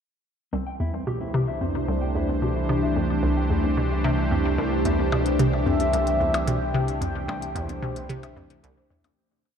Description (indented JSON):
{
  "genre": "ambient, sequencer-driven space music",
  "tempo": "111 BPM",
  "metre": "4/4",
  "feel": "straight",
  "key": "C major",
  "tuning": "A4 = 441 Hz",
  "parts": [
    { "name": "phased analog pad", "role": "sustained chords", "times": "0.5-9.2 s", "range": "E3 to C5", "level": "-26 LUFS", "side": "equal", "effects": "phaser, chorus" },
    { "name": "mellow electric guitar", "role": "arpeggios", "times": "0.5-9.2 s", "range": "C4 to G5", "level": "-33 LUFS", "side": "moving between left 5 dB and right 1 dB", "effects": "auto-pan, ping-pong delay" },
    { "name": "hollow square pluck", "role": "riff", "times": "0.5-9.1 s", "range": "C2 to C3", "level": "-27 LUFS", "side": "equal", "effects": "chorus, ping-pong delay" },
    { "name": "warm sub bass", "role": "bass", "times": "0.5-9.2 s", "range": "C2", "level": "-28 LUFS", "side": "equal", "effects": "none" },
    { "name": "electronic hi-hat and percussion blips", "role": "percussion", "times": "4.9-9.2 s", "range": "none", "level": "-36 LUFS", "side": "left 4 dB", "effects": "ping-pong delay" },
    { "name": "mellow horn-like synth lead", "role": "melody", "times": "5.7-8.4 s", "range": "C5 to G5", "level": "-28 LUFS", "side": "left 1 dB", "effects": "chorus, vintage 12-bit sampler grit, ping-pong delay" }
  ],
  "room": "wet cathedral reverb, RT60 6.1 s",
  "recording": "in a vast, echoing space",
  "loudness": "-22 LUFS",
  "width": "side -7 dB against mid",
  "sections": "0.5-9.2 A section",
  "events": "fade-out 6.3-9.2",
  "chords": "0.5 C"
}